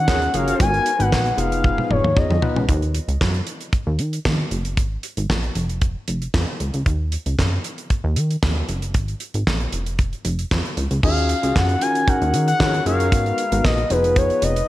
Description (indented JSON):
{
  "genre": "early-eighties boogie funk",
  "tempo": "115 BPM",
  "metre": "4/4",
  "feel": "straight",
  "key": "Eb minor",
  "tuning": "A4 = 438 Hz",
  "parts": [
    { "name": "expressive portamento lead", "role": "melody", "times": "0.0-2.6, 11.0-14.7 s", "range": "Cb5 to Ab5", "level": "-21 LUFS", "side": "left 2 dB", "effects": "chorus, slapback echo" },
    { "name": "warm analog pad", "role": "sustained chords", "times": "0.0-2.7, 11.0-14.7 s", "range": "Eb3 to Cb5", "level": "-32 LUFS", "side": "right 3 dB", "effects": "none" },
    { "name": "plucky analog bass", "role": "bass", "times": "0.0-14.6 s", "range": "F1 to Eb3", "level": "-22 LUFS", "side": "equal", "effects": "none" },
    { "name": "mellow synth brass", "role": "second line", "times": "0.1-0.7, 12.6-13.1 s", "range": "Gb4 to Db5", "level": "-29 LUFS", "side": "equal", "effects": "chorus, slapback echo, tape echo" },
    { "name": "overdriven tine electric piano", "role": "accompaniment", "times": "0.1-2.6, 11.0-14.5 s", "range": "Cb4 to Cb5", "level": "-25 LUFS", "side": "left 2 dB", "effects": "slapback echo" },
    { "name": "damped 70s drum kit", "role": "drums", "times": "0.1-14.7 s", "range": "crash cymbal, handclaps, hi-hat, kick drum, snare drum, toms", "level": "-22 LUFS", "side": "equal", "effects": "none" }
  ],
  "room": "moderate recital hall reverb, RT60 1.3 s, small room reverb",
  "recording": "big arena sound",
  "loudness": "-18 LUFS",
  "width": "side -15 dB against mid",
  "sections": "0.0-2.7 A section; 2.7-11.0 B section; 11.0-14.7 A section",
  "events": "drum fill 1.6-2.7",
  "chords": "0.0 Ebm11; 0.6 Abm9; 1.4 Fm7b5; 2.7 Ebm; 4.8 Absus2; 5.6 Db/F; 6.9 Ebm; 8.9 Absus2; 9.7 Db/F; 11.0 Ebm11; 13.1 Abm9; 13.9 Fm7b5"
}